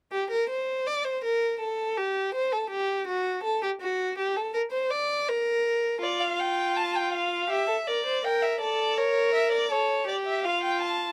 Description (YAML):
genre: classical, baroque-style fugue for string quartet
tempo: 81 BPM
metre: 4/4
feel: straight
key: unclear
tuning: A4 = 440 Hz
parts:
  - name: warm violin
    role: second line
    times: 0.1-11.1 s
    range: F4 to D5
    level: -29 LUFS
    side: equal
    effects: none
  - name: warm violin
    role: melody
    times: 6.0-11.1 s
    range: C#5 to A5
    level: -30 LUFS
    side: equal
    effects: none
room: light reverb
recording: close, detailed microphones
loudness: -27 LUFS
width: mono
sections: 0.1-11.1 A section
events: none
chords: 0.1 N.C.; 7.5 Em7b5/G; 9.0 C#dim7/A#; 10.4 F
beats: | 0.12 0.86 1.59 2.34 | 3.07 3.81 4.55 5.29 | 6.03 6.76 7.50 8.24 | 8.97 9.71 10.44